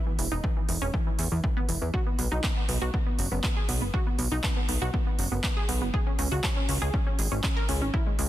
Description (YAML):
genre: progressive house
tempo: 120 BPM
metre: 4/4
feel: straight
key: unclear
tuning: A4 = 440 Hz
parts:
  - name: wide unison pluck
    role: arpeggios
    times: 0.0-8.3 s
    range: E3 to A#4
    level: -32 LUFS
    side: right 1 dB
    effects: sidechain pumping, tape echo
  - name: plucky analog bass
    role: bass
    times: 0.2-8.3 s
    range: E1 to E2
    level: -29 LUFS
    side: equal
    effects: sidechain pumping
  - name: big-room dance drum kit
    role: drums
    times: 0.2-8.3 s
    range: handclaps, hi-hat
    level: -33 LUFS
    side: right 2 dB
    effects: overdrive
  - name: electronic kick drum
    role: drums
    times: 0.4-8.0 s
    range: none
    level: -28 LUFS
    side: equal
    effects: overdrive
room: little or no reverb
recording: dense, heavily limited modern master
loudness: -25 LUFS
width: side -14 dB against mid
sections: 0.0-8.3 A section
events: none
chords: 0.0 E5; 1.9 B5; 5.9 C#5